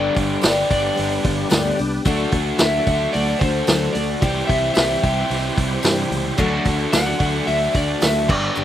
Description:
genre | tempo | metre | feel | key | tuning
folk rock and heartland rock | 111 BPM | 4/4 | straight | D mixolydian | A4 = 440 Hz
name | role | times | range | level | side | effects
electric slide guitar | melody | 0.0-8.5 s | C5 to F#5 | -23 LUFS | left 1 dB | none
picked steel-string acoustic guitar | accompaniment | 0.0-8.6 s | G2 to G4 | -25 LUFS | left 4 dB | none
bright tonewheel organ | sustained chords | 0.0-8.6 s | C4 to D5 | -32 LUFS | equal | slow rotary speaker, chorus vibrato
biting overdriven guitar | riff | 0.0-8.6 s | G2 to G4 | -24 LUFS | right 2 dB | slapback echo
fingered electric bass | bass | 0.0-8.6 s | G1 to G2 | -25 LUFS | right 1 dB | none
vintage drum kit | drums | 0.2-8.4 s | crash cymbal, hi-hat, kick drum, snare drum | -22 LUFS | right 1 dB | none
tambourine | percussion | 0.4-8.1 s | none | -34 LUFS | right 12 dB | none
room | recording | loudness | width
little or no reverb | recorded outdoors, with no room sound | -17 LUFS | side -11 dB against mid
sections
0.0-8.6 A section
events
none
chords
0.0 G; 2.1 D; 4.2 C; 6.4 D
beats
0.43 0.97 1.51 | 2.05 2.59 3.13 3.68 | 4.22 4.76 5.30 5.85 | 6.39 6.93 7.48 8.02 | 8.56

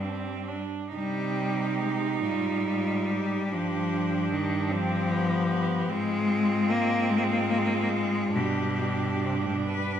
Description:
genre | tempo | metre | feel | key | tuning
classical, lyrical piece for cello ensemble | 42-51 BPM (dotted quarters) | 6/8 | rubato | C minor | A4 = 439 Hz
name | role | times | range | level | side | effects
rich cello | melody | 0.0-10.0 s | D4 to B4 | -35 LUFS | left 4 dB | none
clear cello | second line | 0.0-10.0 s | B3 to Eb4 | -31 LUFS | right 8 dB | none
rich cello | accompaniment | 0.0-9.6 s | Ab2 to Bb3 | -28 LUFS | left 3 dB | none
rich cello | bass | 0.0-10.0 s | G2 to C3 | -32 LUFS | right 2 dB | none
room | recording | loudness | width
wet concert hall reverb, RT60 1.8 s | none | -25 LUFS | side -9 dB against mid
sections
0.9-10.0 A section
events
none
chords
0.0 G5; 0.9 Cm; 3.5 G7; 5.9 Ab; 8.3 G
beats
| 0.93 2.22 | 3.51 4.71 | 5.90 7.11 | 8.35 9.65

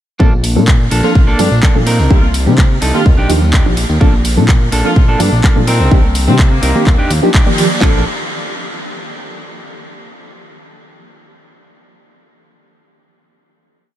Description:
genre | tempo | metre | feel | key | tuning
filtered disco house | 126 BPM | 4/4 | straight | Bb major | A4 = 440 Hz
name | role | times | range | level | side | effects
reed electric piano | accompaniment | 0.2-8.0 s | Eb3 to D5 | -18 LUFS | equal | fast tremolo, phaser, sidechain pumping, low-pass filter
clean electric guitar | riff | 0.2-8.0 s | Bb3 to Bb4 | -22 LUFS | right 2 dB | sidechain pumping, low-pass filter
fat analog bass | bass | 0.2-8.0 s | Bb1 to C3 | -14 LUFS | equal | tube saturation, sidechain pumping, low-pass filter
house drum kit | drums | 0.2-7.9 s | handclaps, kick drum | -10 LUFS | equal | small room reverb
tambourine and congas | percussion | 0.2-7.8 s | none | -24 LUFS | right 2 dB | none
house drum kit | drums | 0.4-7.7 s | handclaps, hi-hat | -20 LUFS | equal | sidechain pumping on hats, small room reverb
bright horn section | melody | 1.0-6.9 s | Bb3 to F4 | -24 LUFS | left 2 dB | sidechain pumping, low-pass filter, analog delay
room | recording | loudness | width
light reverb, digital ambience | none | -9 LUFS | side -12 dB against mid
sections
0.2-7.8 groove; 7.8-9.7 final chord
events
band accent 7.3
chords
0.2 Bbmaj7; 1.9 Cm7; 3.1 Ebmaj7; 4.0 Bbmaj7; 5.7 Cm7; 6.9 Ebmaj7; 7.8 Bbmaj7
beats
| 0.20 0.68 1.15 1.63 | 2.10 2.58 3.06 3.53 | 4.01 4.49 4.96 5.44 | 5.91 6.39 6.87 7.34 | 7.82

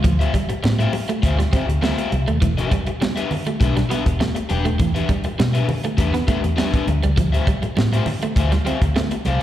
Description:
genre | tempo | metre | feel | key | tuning
funk | 101 BPM | 4/4 | straight | D dorian | A4 = 440 Hz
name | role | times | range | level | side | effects
crunchy overdriven guitar | accompaniment | 0.0-9.4 s | D4 to G5 | -25 LUFS | left 5 dB | slapback echo
electric guitar at the edge of break-up | riff | 0.0-9.2 s | E3 to C4 | -26 LUFS | right 5 dB | slapback echo
vintage muted fingered electric bass | bass | 0.0-9.4 s | Eb1 to B2 | -20 LUFS | equal | none
tight funk drum kit | drums | 0.0-9.4 s | hi-hat, kick drum, snare drum | -22 LUFS | equal | none
congas | percussion | 0.1-9.4 s | none | -29 LUFS | right 2 dB | slapback echo
room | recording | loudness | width
light reverb, studio ambience | live gig heard through the venue's PA, recital hall reverb | -17 LUFS | side -12 dB against mid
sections
0.0-9.4 A section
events
none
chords
0.0 Dm11; 2.4 Em7; 7.2 Dm11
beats
| 0.04 0.63 1.23 1.82 | 2.42 3.01 3.61 4.20 | 4.80 5.39 5.99 6.58 | 7.17 7.77 8.36 8.96

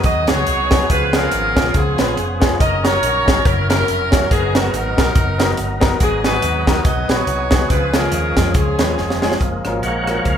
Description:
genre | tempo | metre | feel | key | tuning
uptempo gospel | 141 BPM | 4/4 | swing 57% on 8ths | F# major | A4 = 443 Hz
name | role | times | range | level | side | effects
bright saxophone section | melody | 0.0-9.4 s | B3 to D#5 | -19 LUFS | equal | none
percussive tonewheel organ | sustained chords | 0.0-10.4 s | E3 to F#5 | -24 LUFS | right 1 dB | overdrive, fast rotary speaker
hollow-body short-scale fingered electric bass | bass | 0.0-10.4 s | E#1 to E#2 | -22 LUFS | equal | none
crisp fusion drum kit | drums | 0.0-10.4 s | hi-hat, kick drum, rim click, snare drum | -18 LUFS | equal | none
clear grand piano | accompaniment | 0.3-10.2 s | G#2 to C#5 | -24 LUFS | left 2 dB | none
room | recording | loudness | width
moderate large studio reverb, RT60 1.4 s | band playing live in one room | -14 LUFS | side -8 dB against mid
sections
0.0-9.4 A section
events
drum fill 9.0-9.4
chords
0.0 B6/D#; 0.9 C#7; 2.6 F#6; 3.5 F#7; 4.3 Bmaj7/F#; 6.0 G#m7; 7.7 C#; 9.4 F#maj7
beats
0.05 0.48 | 0.90 1.33 1.75 2.18 | 2.61 3.03 3.46 3.88 | 4.31 4.73 5.16 5.58 | 6.01 6.43 6.86 7.28 | 7.71 8.13 8.56 8.98 | 9.41 9.83 10.26

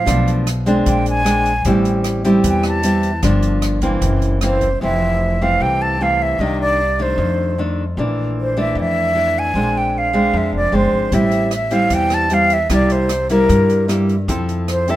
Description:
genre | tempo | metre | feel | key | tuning
bossa nova | 152 BPM | 4/4 | straight | F major | A4 = 440 Hz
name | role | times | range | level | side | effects
breathy concert flute | melody | 0.0-15.0 s | Bb4 to A5 | -18 LUFS | equal | none
nylon-string guitar | accompaniment | 0.0-15.0 s | F2 to A4 | -18 LUFS | equal | none
upright bass | bass | 0.0-15.0 s | F1 to G2 | -21 LUFS | equal | none
open jazz drum kit | drums | 0.1-4.7, 11.1-15.0 s | hi-hat, kick drum, rim click | -26 LUFS | equal | none
room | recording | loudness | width
light reverb | minimal, uncompressed stereo recording | -14 LUFS | side -14 dB against mid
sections
0.0-4.8 A section; 4.8-15.0 B section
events
flute solo 0.0-4.8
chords
0.1 Bm7b5; 0.9 Bb9; 1.7 Am7; 3.2 Gm7; 4.0 Gb7#11; 4.8 Fmaj7; 6.4 Cm9; 7.2 F6; 8.0 Bbmaj7#11; 9.5 Bb9; 11.1 Am7; 12.7 C7; 14.3 Fmaj7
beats
| 0.08 0.47 0.87 1.26 | 1.66 2.05 2.45 2.84 | 3.23 3.63 4.02 4.42 | 4.81 5.21 5.60 5.99 | 6.39 6.78 7.18 7.57 | 7.97 8.36 8.76 9.15 | 9.55 9.94 10.34 10.73 | 11.12 11.52 11.91 12.31 | 12.71 13.10 13.49 13.89 | 14.29 14.68

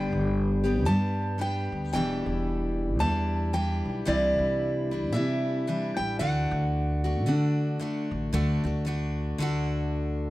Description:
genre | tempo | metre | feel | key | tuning
acoustic folk duo or small band | 112 BPM | 4/4 | swing 59% on 8ths | unclear | A4 = 442 Hz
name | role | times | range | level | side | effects
picked steel-string acoustic guitar | melody | 0.0-7.8 s | D5 to A5 | -31 LUFS | right 1 dB | tape echo
picked steel-string acoustic guitar | accompaniment | 0.0-10.3 s | E2 to G4 | -29 LUFS | left 1 dB | none
upright bass | bass | 0.0-10.3 s | E1 to D3 | -29 LUFS | equal | none
room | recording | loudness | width
little or no reverb | dry, close 1970s-style studio recording, faint mains hum | -25 LUFS | side -17 dB against mid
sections
0.0-8.3 A section; 8.3-10.3 B section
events
none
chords
0.0 G; 1.9 Em7; 4.1 Cadd9; 6.2 D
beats
0.33 0.86 1.40 | 1.93 2.46 3.00 3.53 | 4.07 4.60 5.13 5.67 | 6.20 6.73 7.27 7.80 | 8.33 8.87 9.40 9.93

